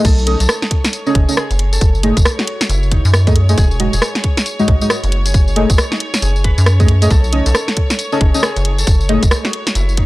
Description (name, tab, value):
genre	UK garage, two-step garage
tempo	136 BPM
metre	4/4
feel	swing 61% on 16ths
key	F# dorian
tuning	A4 = 444 Hz
part	Celtic harp	melody	0.0-10.1 s	D#4 to B4	-27 LUFS	left 2 dB	tape echo
part	clear studio violin section	sustained chords	0.0-10.1 s	C#5	-28 LUFS	equal	sidechain pumping
part	deep mellow chord stab	stabs	0.0-9.2 s	G#3 to D#5	-19 LUFS	equal	chorus, phaser, tape echo
part	rubbery square bass	bass	0.0-10.1 s	E1 to F#2	-14 LUFS	equal	none
part	electronic kick drum	drums	0.0-10.1 s	none	-13 LUFS	equal	none
part	garage drum kit	drums	0.0-10.1 s	crash cymbal, hi-hat, rim click, snare drum, tambourine	-18 LUFS	equal	overdrive
room	little or no reverb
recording	dry, gritty hardware recording, transformer saturation, cassette tape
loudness	-12 LUFS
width	side -19 dB against mid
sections	0.0-10.1 A section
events	none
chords	0.0 B9; 1.8 F#m69; 3.6 Emaj9; 5.1 F#m69; 7.1 B9; 8.9 F#m69